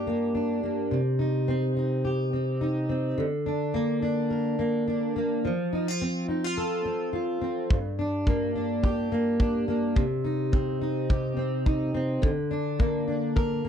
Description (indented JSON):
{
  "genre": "acoustic pop",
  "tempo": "106 BPM",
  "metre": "4/4",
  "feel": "swing 55% on 16ths",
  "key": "unclear",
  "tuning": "A4 = 441 Hz",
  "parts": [
    { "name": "fingerpicked plugged-in steel-string acoustic guitar", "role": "accompaniment", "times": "0.0-13.7 s", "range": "G2 to Bb4", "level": "-25 LUFS", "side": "equal", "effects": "double-tracked left and right" },
    { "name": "kick drum", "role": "drums", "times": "7.7-13.5 s", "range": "none", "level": "-25 LUFS", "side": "equal", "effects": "none" }
  ],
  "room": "light reverb",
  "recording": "none",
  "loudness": "-24 LUFS",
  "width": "side -8 dB against mid",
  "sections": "0.0-13.7 A section",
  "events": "none",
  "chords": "0.0 Gm; 0.9 Cm; 3.2 Bb/D; 5.4 F; 7.7 Gm; 10.0 Cm; 12.2 Bb/D"
}